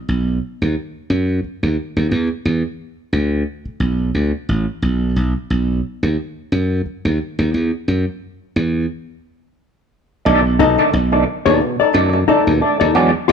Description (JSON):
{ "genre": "funk", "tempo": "89 BPM", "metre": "4/4", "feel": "swing 56% on 16ths", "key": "B mixolydian", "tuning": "A4 = 438 Hz", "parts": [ { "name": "glassy slap bass", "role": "bass", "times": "0.1-13.3 s", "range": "A1 to F#2", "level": "-17 LUFS", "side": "right 1 dB", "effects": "none" }, { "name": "overdriven tonewheel organ", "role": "stabs", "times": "10.3-13.3 s", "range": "B2 to D4", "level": "-17 LUFS", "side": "right 2 dB", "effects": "chorus vibrato, slow rotary speaker" }, { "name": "hollow-body jazz guitar", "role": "accompaniment", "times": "10.6-13.3 s", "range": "D#4 to D#5", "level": "-16 LUFS", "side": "left 6 dB", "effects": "none" } ], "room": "moderate large studio reverb, RT60 1.2 s", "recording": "band playing live in one room", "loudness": "-16 LUFS", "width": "side -7 dB against mid", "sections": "0.0-10.3 A section; 10.3-13.3 B section", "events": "stop 8.9-10.3", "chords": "0.0 B; 2.1 E5; 4.8 B; 7.5 Esus2; 10.3 B7#9" }